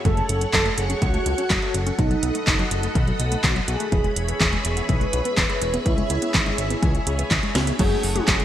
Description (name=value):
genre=italo disco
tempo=124 BPM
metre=4/4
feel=straight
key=F# dorian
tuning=A4 = 441 Hz
part: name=string machine, full ensemble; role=sustained chords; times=0.0-8.4 s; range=G#4 to C#6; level=-29 LUFS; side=equal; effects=ensemble chorus
part: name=mellow synth brass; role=melody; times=0.1-8.4 s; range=D#4 to B4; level=-28 LUFS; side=right 1 dB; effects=chorus, digital delay
part: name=wide unison pluck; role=arpeggios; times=0.1-8.4 s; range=D#3 to C#4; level=-30 LUFS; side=left 2 dB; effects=vintage 12-bit sampler grit, digital delay
part: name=fat analog bass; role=bass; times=0.1-8.4 s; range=E1 to C#2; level=-26 LUFS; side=equal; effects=none
part: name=electronic kick drum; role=drums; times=0.1-8.4 s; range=none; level=-23 LUFS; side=equal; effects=none
part: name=house drum kit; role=drums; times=0.1-8.4 s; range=crash cymbal, handclaps, hi-hat, snare drum, toms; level=-24 LUFS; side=equal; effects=gated reverb
part: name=clear concert grand piano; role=stabs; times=7.8-8.4 s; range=A3 to G#4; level=-29 LUFS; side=right 3 dB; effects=ensemble chorus
room=moderate lush hall reverb, RT60 2.1 s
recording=bright 1980s-style digital production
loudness=-19 LUFS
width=side -11 dB against mid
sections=0.0-7.8 A section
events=drum fill 7.6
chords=0.1 F#m; 2.0 B7; 3.9 E6; 5.9 C#m7; 7.8 F#madd9